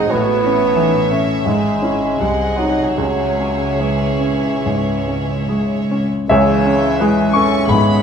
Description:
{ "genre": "classical, romantic movement for piano and orchestra", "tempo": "70-94 BPM", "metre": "4/4", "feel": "rubato", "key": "C# minor", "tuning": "A4 = 440 Hz", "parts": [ { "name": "clear baby grand piano", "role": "melody", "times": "0.0-8.0 s", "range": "B#1 to C#6", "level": "-17 LUFS", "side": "left 1 dB", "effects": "none" }, { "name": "warm symphonic violin section", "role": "melody", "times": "0.0-8.0 s", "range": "E5 to C#6", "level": "-27 LUFS", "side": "left 4 dB", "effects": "none" }, { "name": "dark chamber violin section", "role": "second line", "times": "0.0-7.5 s", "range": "G#4 to D#5", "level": "-27 LUFS", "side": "right 1 dB", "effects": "none" }, { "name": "dark chamber viola section", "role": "accompaniment", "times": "0.0-7.5 s", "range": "G#3 to G#4", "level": "-26 LUFS", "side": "equal", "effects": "none" }, { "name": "warm bassoon", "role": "accompaniment", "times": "0.0-8.0 s", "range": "C#3 to D#4", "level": "-20 LUFS", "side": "right 2 dB", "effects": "none" }, { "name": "rich symphonic cello section", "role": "bass", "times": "0.0-8.0 s", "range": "B#1 to C#4", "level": "-26 LUFS", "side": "equal", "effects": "none" }, { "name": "warm studio double bass section", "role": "bass", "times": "0.0-8.0 s", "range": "G#1 to C#2", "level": "-25 LUFS", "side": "right 2 dB", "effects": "none" }, { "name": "hollow concert flute", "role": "second line", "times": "6.3-8.0 s", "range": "E5 to G#5", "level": "-26 LUFS", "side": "left 2 dB", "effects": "none" }, { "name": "mellow clarinet", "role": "second line", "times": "6.3-8.0 s", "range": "G#4 to C#5", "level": "-24 LUFS", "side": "left 1 dB", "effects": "none" }, { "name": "mellow French horn section", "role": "sustained chords", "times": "6.3-8.0 s", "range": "G#3 to C#4", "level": "-24 LUFS", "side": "equal", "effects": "none" }, { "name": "timpani", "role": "percussion", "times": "6.3-7.3 s", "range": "C#3", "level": "-24 LUFS", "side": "equal", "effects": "none" } ], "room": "wet recital hall reverb, RT60 1.5 s", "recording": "minimal, uncompressed stereo recording", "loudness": "-14 LUFS", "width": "side -7 dB against mid", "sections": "0.0-6.3 A section; 6.3-8.0 A section", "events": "none", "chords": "0.1 A; 1.5 C#m/G#; 2.2 G#7/B#; 3.0 C#m", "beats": "| 0.11 0.77 1.46 2.20 | 2.98 3.80 4.65 5.49 | 6.29 7.00 7.69" }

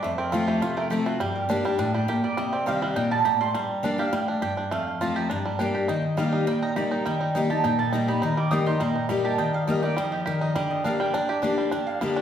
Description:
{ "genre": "bluegrass", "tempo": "205 BPM", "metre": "4/4", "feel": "straight", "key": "unclear", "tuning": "A4 = 440 Hz", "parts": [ { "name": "bluegrass banjo", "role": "melody", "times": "0.0-12.2 s", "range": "G3 to G4", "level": "-28 LUFS", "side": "right 2 dB", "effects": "none" }, { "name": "picked steel-string acoustic guitar", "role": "accompaniment", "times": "0.0-12.2 s", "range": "F2 to G4", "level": "-25 LUFS", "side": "left 2 dB", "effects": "none" }, { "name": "mandolin", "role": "stabs", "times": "0.0-12.2 s", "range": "F#4 to Eb6", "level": "-30 LUFS", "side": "right 5 dB", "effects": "none" } ], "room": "wet recital hall reverb, RT60 1.3 s", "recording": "recorded in a church or concert hall", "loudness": "-22 LUFS", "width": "side -9 dB against mid", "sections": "0.0-5.9 A section; 5.9-12.2 A section", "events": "mandolin solo 0.0-12.2", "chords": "0.0 F; 1.2 Gm; 2.4 Cm; 3.5 Gm; 4.7 F; 5.3 Gm; 5.9 Eb; 10.6 Gm/D", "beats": "| 0.03 0.33 0.62 0.91 | 1.20 1.50 1.79 2.08 | 2.38 2.67 2.96 3.25 | 3.55 3.84 4.13 4.43 | 4.72 5.01 5.30 5.60 | 5.89 6.18 6.47 6.76 | 7.06 7.35 7.64 7.93 | 8.23 8.52 8.81 9.10 | 9.39 9.68 9.97 10.27 | 10.56 10.85 11.14 11.43 | 11.72 12.01" }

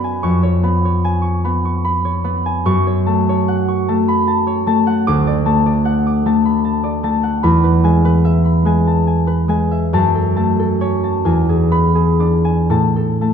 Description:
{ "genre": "classical, solo harp piece", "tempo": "39-51 BPM (dotted quarters)", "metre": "6/8", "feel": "rubato", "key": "F# minor", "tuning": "A4 = 443 Hz", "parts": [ { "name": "concert harp", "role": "solo", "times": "0.0-13.3 s", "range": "D2 to D6", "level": "-13 LUFS", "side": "equal", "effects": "none" } ], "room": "wet recital hall reverb, RT60 1.6 s", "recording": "minimal, uncompressed stereo recording", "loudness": "-13 LUFS", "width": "side -7 dB against mid", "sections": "0.0-13.3 A section", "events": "none", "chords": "0.2 C#7/E#; 2.7 F#m; 5.1 D; 7.4 E; 9.9 F#m; 11.3 E7; 12.7 N.C.", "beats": "| 0.23 1.44 | 2.66 3.88 | 5.07 6.26 | 7.44 8.66 | 9.93 11.27 | 12.70" }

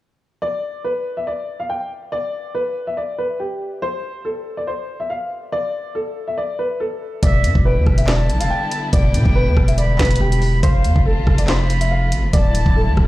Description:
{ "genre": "hip hop, drill", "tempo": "141 BPM", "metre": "4/4", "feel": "half-time", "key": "E phrygian", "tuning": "A4 = 440 Hz", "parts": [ { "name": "dark baby grand piano", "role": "melody", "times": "0.4-13.1 s", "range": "G4 to G5", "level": "-23 LUFS", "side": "left 1 dB", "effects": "low-pass filter, tape echo" }, { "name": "breathy silver concert flute", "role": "second line", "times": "7.2-13.0 s", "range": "E5 to B5", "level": "-26 LUFS", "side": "right 1 dB", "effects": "tape echo" }, { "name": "warm symphonic string section", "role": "sustained chords", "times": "7.2-13.1 s", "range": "C3 to F4", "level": "-28 LUFS", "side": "left 1 dB", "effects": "none" }, { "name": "distorted 808-style bass", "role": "bass", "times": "7.2-13.1 s", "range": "D1 to B2", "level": "-17 LUFS", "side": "equal", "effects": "distortion" }, { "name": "drill drum kit", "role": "drums", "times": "7.2-13.1 s", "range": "handclaps, hi-hat, kick drum, rim click, snare drum", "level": "-17 LUFS", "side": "equal", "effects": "none" } ], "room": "small room ambience", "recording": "played on a big sound system in a bare room, large studio reverb", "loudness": "-17 LUFS", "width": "side -17 dB against mid", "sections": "0.4-7.2 A section; 7.2-13.1 B section", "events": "none", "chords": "0.4 N.C.; 7.2 Em7; 10.6 F; 12.3 Dmadd9", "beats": "| 0.42 0.84 1.27 1.70 | 2.12 2.55 2.97 3.40 | 3.82 4.25 4.67 5.10 | 5.53 5.95 6.38 6.80 | 7.23 7.65 8.08 8.50 | 8.93 9.36 9.78 10.21 | 10.63 11.06 11.48 11.91 | 12.33 12.76" }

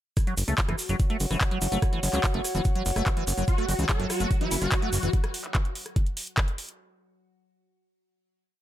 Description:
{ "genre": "psychedelic trance", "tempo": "145 BPM", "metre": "4/4", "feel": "straight", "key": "F# minor", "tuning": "A4 = 441 Hz", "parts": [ { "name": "electronic kick drum", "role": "drums", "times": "0.2-6.5 s", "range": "none", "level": "-25 LUFS", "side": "equal", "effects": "none" }, { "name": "garage drum kit", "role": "drums", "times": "0.2-6.8 s", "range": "handclaps, hi-hat, rim click", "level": "-31 LUFS", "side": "equal", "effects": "none" }, { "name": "tube shaker", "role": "percussion", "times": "0.2-5.1 s", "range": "none", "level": "-35 LUFS", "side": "right 3 dB", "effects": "none" }, { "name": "warbly tape-like pad", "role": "texture", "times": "0.8-5.1 s", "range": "F#4 to F#5", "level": "-35 LUFS", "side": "equal", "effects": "chorus, built-in reverb, sidechain pumping" }, { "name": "liquid acid bass", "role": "riff", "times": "0.3-5.1 s", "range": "E3 to A3", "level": "-33 LUFS", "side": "equal", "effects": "chorus, auto-pan, sidechain pumping, tape echo" }, { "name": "fat analog bass", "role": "bass", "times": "0.4-5.1 s", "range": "F#1 to C#2", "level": "-27 LUFS", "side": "equal", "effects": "none" }, { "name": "swarming rave lead", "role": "melody", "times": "3.5-5.1 s", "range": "E4 to A4", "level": "-32 LUFS", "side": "right 1 dB", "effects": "chorus, phaser, sidechain pumping, digital delay" }, { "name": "evolving wavetable pad", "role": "sustained chords", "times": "4.0-5.2 s", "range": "F#3 to F#4", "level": "-36 LUFS", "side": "left 2 dB", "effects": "phaser, built-in reverb, vintage 12-bit sampler grit, sidechain pumping" } ], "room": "little or no reverb", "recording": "none", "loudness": "-24 LUFS", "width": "side -13 dB against mid", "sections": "0.2-6.8 drop", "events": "drop 0.2-6.8", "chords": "0.2 F#5", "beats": "| 0.17 0.58 1.00 1.41 | 1.82 2.24 2.65 3.06 | 3.48 3.89 4.31 4.72 | 5.13 5.55 5.96 6.38" }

